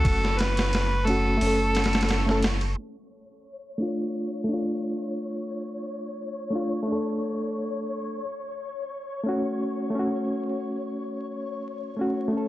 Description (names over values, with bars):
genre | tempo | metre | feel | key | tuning
trip hop | 88 BPM | 4/4 | swing 53% on 16ths | unclear | A4 = 440 Hz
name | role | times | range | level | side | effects
overdriven harmonica | melody | 0.0-2.4 s | A4 to B4 | -27 LUFS | equal | tape echo
reed electric piano | accompaniment | 0.0-12.5 s | A3 to A4 | -28 LUFS | equal | harmonic tremolo, vintage 12-bit sampler grit, tape echo
soft dub sub bass | bass | 0.0-2.7 s | F#1 | -26 LUFS | equal | none
dusty soul sampler-style drum kit | drums | 0.0-2.8 s | hi-hat, kick drum, ride cymbal, snare drum | -27 LUFS | equal | vintage 12-bit sampler grit
flickering grainy texture | texture | 0.0-12.5 s | C#5 to C#6 | -36 LUFS | left 2 dB | built-in reverb
room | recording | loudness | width
light reverb | vinyl crackle, low-pass filter | -25 LUFS | side -15 dB against mid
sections
0.0-2.8 A section; 2.8-12.5 B section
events
filter sweep on reed electric piano 0.0-2.8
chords
0.0 F#m; 2.8 Dm; 8.2 F#m